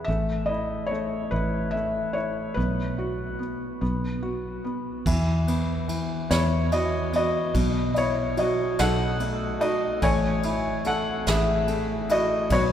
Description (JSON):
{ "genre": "acoustic folk-pop ballad", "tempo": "48 BPM (dotted quarters)", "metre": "6/8", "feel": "straight", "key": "E major", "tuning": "A4 = 438 Hz", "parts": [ { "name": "felt-muted upright piano", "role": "melody", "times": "0.0-12.7 s", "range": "B2 to G#5", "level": "-25 LUFS", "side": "left 1 dB", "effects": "none" }, { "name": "fingered electric bass", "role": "bass", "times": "0.1-12.7 s", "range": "A1 to E2", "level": "-28 LUFS", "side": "equal", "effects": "none" }, { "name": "soft brush drum kit", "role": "drums", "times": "5.1-12.7 s", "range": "kick drum, ride cymbal, snare drum", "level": "-32 LUFS", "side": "right 1 dB", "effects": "none" } ], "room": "wet cathedral reverb, RT60 4.7 s", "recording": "recorded in a church or concert hall", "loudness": "-23 LUFS", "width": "side -10 dB against mid", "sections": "0.0-5.1 A section; 5.1-12.7 B section", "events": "none", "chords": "0.1 A5; 2.6 B5; 5.1 E5; 7.5 B7; 10.0 Amaj7" }